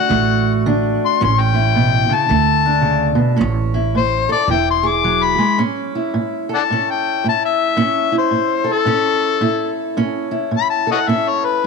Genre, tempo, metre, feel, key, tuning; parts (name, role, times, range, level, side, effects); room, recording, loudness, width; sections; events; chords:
acoustic country blues, solo or duo; 109 BPM; 4/4; swing 62% on 8ths; A mixolydian; A4 = 440 Hz
overdriven harmonica; melody; 0.0-11.7 s; A4 to D6; -17 LUFS; left 10 dB
fingerpicked steel-string acoustic guitar; accompaniment; 0.0-11.7 s; A2 to A4; -18 LUFS; right 2 dB
upright bass; bass; 0.1-5.3 s; E1 to D2; -20 LUFS; right 4 dB
light reverb, small room ambience; -14 LUFS; side -4 dB against mid
0.0-5.6 A section; 5.6-11.7 B section
harmonica solo 0.0-5.6
0.0 D; 1.2 A; 2.3 D5; 3.4 A; 4.5 E; 5.6 A